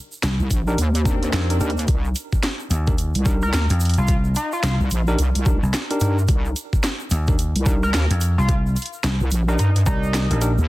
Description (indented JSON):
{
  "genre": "glitch hop",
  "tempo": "109 BPM",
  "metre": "4/4",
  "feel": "swing 61% on 16ths",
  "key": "C minor",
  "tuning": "A4 = 436 Hz",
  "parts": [
    { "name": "egg shaker", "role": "percussion", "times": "0.1-10.7 s", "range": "none", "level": "-37 LUFS", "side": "right 4 dB", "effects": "none" },
    { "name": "vintage slap bass", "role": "bass", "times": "0.2-10.6 s", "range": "Bb1 to F2", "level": "-20 LUFS", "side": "equal", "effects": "none" },
    { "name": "drum and bass drum kit", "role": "drums", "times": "0.2-10.6 s", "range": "hi-hat, snare drum", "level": "-26 LUFS", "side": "equal", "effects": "overdrive" },
    { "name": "wobble bass", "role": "bass", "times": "0.4-10.7 s", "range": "Bb1 to G2", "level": "-20 LUFS", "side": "equal", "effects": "chorus" },
    { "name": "electronic kick drum", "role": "drums", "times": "0.5-10.0 s", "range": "none", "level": "-20 LUFS", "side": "equal", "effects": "overdrive" },
    { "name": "tine electric piano", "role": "stabs", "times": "0.7-10.5 s", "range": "D4 to D5", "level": "-28 LUFS", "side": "equal", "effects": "vintage 12-bit sampler grit, sidechain pumping, ping-pong delay" },
    { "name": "swell", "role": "sound effects", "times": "0.9-1.9 s", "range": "none", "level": "-33 LUFS", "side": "left 1 dB", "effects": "none" },
    { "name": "sync lead", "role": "melody", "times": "3.4-10.4 s", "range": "Eb4 to Bb4", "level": "-28 LUFS", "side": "left 1 dB", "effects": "chorus, ping-pong delay" }
  ],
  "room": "little or no reverb",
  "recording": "dense, heavily limited modern master, vinyl crackle",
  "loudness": "-18 LUFS",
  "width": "side -18 dB against mid",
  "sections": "0.0-10.7 A section",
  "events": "swell 0.9-1.9",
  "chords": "0.0 Cm9"
}